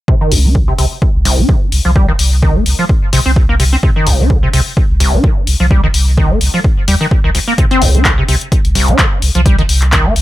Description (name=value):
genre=acid house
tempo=128 BPM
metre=4/4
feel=swing 55% on 16ths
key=C minor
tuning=A4 = 440 Hz
part: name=acid bass, square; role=riff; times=0.1-10.1 s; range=C2 to Eb4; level=-15 LUFS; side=equal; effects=overdrive, wide subtle chorus, sidechain pumping, digital delay
part: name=electronic kick drum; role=drums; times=0.1-10.0 s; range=none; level=-13 LUFS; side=equal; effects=none
part: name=warm sub bass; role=bass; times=0.3-10.2 s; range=Bb1 to Eb2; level=-13 LUFS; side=equal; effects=sidechain pumping
part: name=punchy analog drum machine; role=drums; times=0.3-10.2 s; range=handclaps, hi-hat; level=-17 LUFS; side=left 3 dB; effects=none
room=little or no reverb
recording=none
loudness=-9 LUFS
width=side -15 dB against mid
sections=0.1-10.2 A section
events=none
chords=0.1 Cm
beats=| 0.08 0.55 1.02 1.49 | 1.96 2.43 2.89 3.36 | 3.83 4.30 4.77 5.24 | 5.71 6.18 6.64 7.11 | 7.58 8.05 8.52 8.99 | 9.46 9.93